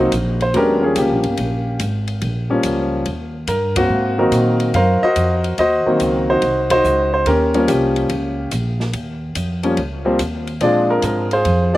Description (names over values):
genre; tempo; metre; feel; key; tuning
jazz piano trio; 143 BPM; 4/4; swing 68% on 8ths; unclear; A4 = 442 Hz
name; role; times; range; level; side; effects
clear concert grand piano; melody; 0.0-11.8 s; Eb3 to F5; -16 LUFS; equal; slapback echo
upright bass; bass; 0.0-11.8 s; G1 to Bb2; -21 LUFS; equal; none
open jazz drum kit; drums; 0.1-11.6 s; hi-hat, kick drum, ride cymbal, snare drum; -30 LUFS; left 2 dB; none
room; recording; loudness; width
little or no reverb; recorded outdoors, with no room sound, faint mains hum; -15 LUFS; side -16 dB against mid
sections
0.0-11.8 A section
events
band accent 3.7, 6.6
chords
0.0 Ebm6/Bb; 0.5 Eb9; 3.9 Ab9; 7.3 Eb9; 10.6 Bb9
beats
0.13 | 0.55 0.97 1.39 1.80 | 2.23 2.64 3.06 3.48 | 3.90 4.32 4.74 5.16 | 5.58 6.00 6.42 6.84 | 7.26 7.68 8.10 8.52 | 8.93 9.35 9.77 10.19 | 10.61 11.03 11.45